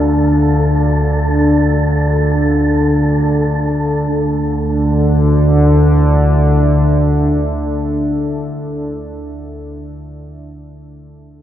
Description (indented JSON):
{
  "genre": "dark ambient drone",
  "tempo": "free time",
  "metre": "none",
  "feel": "none",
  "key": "unclear",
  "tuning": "A4 = 440 Hz",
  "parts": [
    { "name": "deep dark ambient pad", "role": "sustained chords", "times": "0.0-9.3 s", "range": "D4 to F5", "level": "-18 LUFS", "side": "equal", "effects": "chorus, built-in reverb" },
    { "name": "analog drone", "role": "drone", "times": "0.0-9.0 s", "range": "D2 to D3", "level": "-14 LUFS", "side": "equal", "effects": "chorus" },
    { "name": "wind-like tuned noise texture", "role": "texture", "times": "0.0-4.1 s", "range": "A4", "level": "-25 LUFS", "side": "right 1 dB", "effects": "built-in reverb" }
  ],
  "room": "wet cathedral reverb, RT60 6.3 s",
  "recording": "in a vast, echoing space",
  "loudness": "-12 LUFS",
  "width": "side -11 dB against mid",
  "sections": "0.0-4.1 A section; 4.1-8.8 B section",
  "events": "none",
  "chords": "0.0 Dm; 4.1 Dsus2"
}